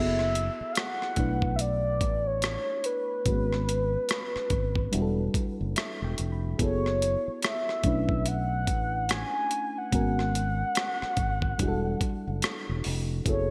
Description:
R&B, neo-soul; 72 BPM; 4/4; swing 59% on 16ths; A4 = 439 Hz
mellow horn-like synth lead; melody; 0.0-13.5 s; B4 to G#5; -33 LUFS; equal; chorus
mellow FM electric piano; accompaniment; 0.0-13.5 s; G3 to B5; -35 LUFS; equal; chorus, phaser
fingered electric bass; bass; 0.0-13.5 s; E1 to B1; -33 LUFS; equal
dusty soul sampler-style drum kit; drums; 0.2-13.5 s; hi-hat, kick drum, rim click; -33 LUFS; equal; overdrive, gated reverb
light reverb, digital ambience; bright 1980s-style digital production; -28 LUFS; mono
0.0-13.5 A section
FM electric piano fill 5.3-6.6
0.0 F#m11; 1.2 Bm7; 3.3 G#m7; 4.9 Em11; 6.6 F#m11; 7.8 Bm11; 9.9 G#m11; 11.6 Em11

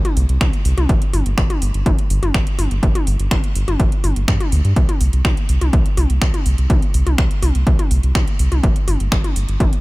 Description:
melodic techno; 124 BPM; 4/4; straight; A4 = 440 Hz
house drum kit; drums; 0.1-9.8 s; finger snaps, hi-hat, toms; -24 LUFS; left 1 dB
round analog bass; bass; 0.2-9.7 s; G1 to G2; -17 LUFS; equal; sidechain pumping
electronic kick drum; drums; 0.4-9.7 s; -18 LUFS; equal; overdrive
little or no reverb; -14 LUFS; side -21 dB against mid
0.0-9.8 A section

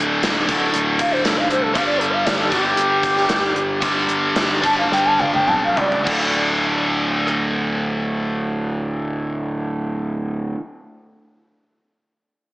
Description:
hard rock; 101-118 BPM; 4/4; straight; D minor; A4 = 440 Hz
biting overdriven guitar; riff; 0.0-10.6 s; D2 to G3; -19 LUFS; equal
modern bright picked electric bass; bass; 0.0-10.5 s; D1 to C#2; -33 LUFS; equal
gated 80s drum kit; drums; 0.2-7.4 s; crash cymbal, hi-hat, kick drum, rim click, snare drum, toms; -24 LUFS; equal
bass bansuri; melody; 1.0-6.1 s; G4 to A5; -21 LUFS; equal; slapback echo, tape echo
moderate lush hall reverb, RT60 2.0 s; small speaker sound; -17 LUFS; side -22 dB against mid
0.0-6.1 A section; 6.1-10.8 B section
bansuri solo 0.0-6.1; slowing down 1.8-6.1; drum fill 4.9-6.1
0.0 Dm; 1.8 G5; 6.1 D5

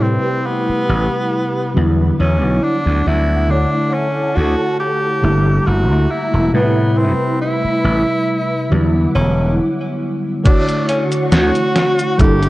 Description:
vaporwave; 69 BPM; 4/4; swing 53% on 16ths; D major; A4 = 437 Hz
bright tenor saxophone; melody; 0.0-12.5 s; B3 to G4; -19 LUFS; equal; tape echo
mellow FM electric piano; accompaniment; 0.0-12.5 s; C3 to C#5; -18 LUFS; equal; ensemble chorus
soft string machine; sustained chords; 0.0-12.5 s; D3 to D6; -26 LUFS; equal; ensemble chorus, vintage 12-bit sampler grit
gritty slap bass; bass; 0.0-12.5 s; E1 to A2; -15 LUFS; equal; overdrive
detuned 8-bit digital drum machine; drums; 10.5-12.5 s; cabasa, crash cymbal, hi-hat, snare drum; -20 LUFS; equal; vintage 12-bit sampler grit
electronic kick drum; drums; 10.5-12.4 s; -13 LUFS; equal; vintage 12-bit sampler grit
light reverb; worn, warbling old tape, cassette tape, warbly pitch drift; -13 LUFS; side -18 dB against mid
0.0-10.5 A section; 10.5-12.5 B section
filter sweep on string machine 0.0-10.5; stop 9.6-10.5
0.0 Am9; 1.8 Em9; 3.5 Dmaj7; 5.2 Gm6; 6.5 Am9; 8.7 Em9; 10.5 Dmaj7

